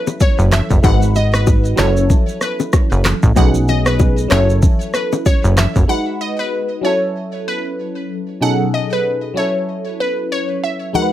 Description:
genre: afrobeats.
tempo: 95 BPM.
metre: 4/4.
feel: swing 58% on 16ths.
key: F# dorian.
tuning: A4 = 440 Hz.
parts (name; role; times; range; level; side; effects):
glassy wavetable pluck; melody; 0.0-11.1 s; B4 to F#5; -21 LUFS; left 1 dB; chorus, digital delay.
barking FM electric piano; accompaniment; 0.0-11.1 s; B2 to B4; -21 LUFS; equal; phaser.
deep house drum kit; drums; 0.1-5.9 s; handclaps, kick drum, rim click, shaker; -15 LUFS; equal; none.
bongos and congas; percussion; 0.1-5.9, 10.9-11.1 s; none; -23 LUFS; left 5 dB; none.
plucky analog bass; bass; 0.4-5.9 s; F#1 to B1; -14 LUFS; equal; none.
room: light reverb.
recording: none.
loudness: -13 LUFS.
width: side -12 dB against mid.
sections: 0.0-5.9 A section; 5.9-11.1 B section.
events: none.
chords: 0.0 F#m7; 0.8 G#m7; 1.8 F#m7; 3.4 B13; 4.3 F#m7; 5.9 G#m7; 6.8 F#m7; 8.4 B13; 9.4 F#m7.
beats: 0.20 | 0.84 1.47 2.10 2.73 | 3.36 4.00 4.63 5.26 | 5.89 6.52 7.15 7.78 | 8.42 9.05 9.68 10.31 | 10.94.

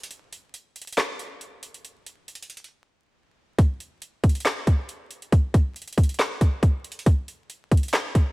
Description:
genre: hip hop.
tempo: 138 BPM.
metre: 4/4.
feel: half-time.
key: none.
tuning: none.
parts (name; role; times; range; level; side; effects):
trap drum kit; drums; 0.0-8.3 s; handclaps, hi-hat, kick drum, snare drum; -21 LUFS; equal; none.
room: little or no reverb.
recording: vinyl crackle.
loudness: -21 LUFS.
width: side -23 dB against mid.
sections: 0.0-8.3 A section.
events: break 0.0-3.6.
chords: none.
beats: | 0.11 0.54 0.98 1.41 | 1.85 2.28 2.71 3.15 | 3.58 4.02 4.45 4.89 | 5.32 5.76 6.19 6.63 | 7.06 7.50 7.93.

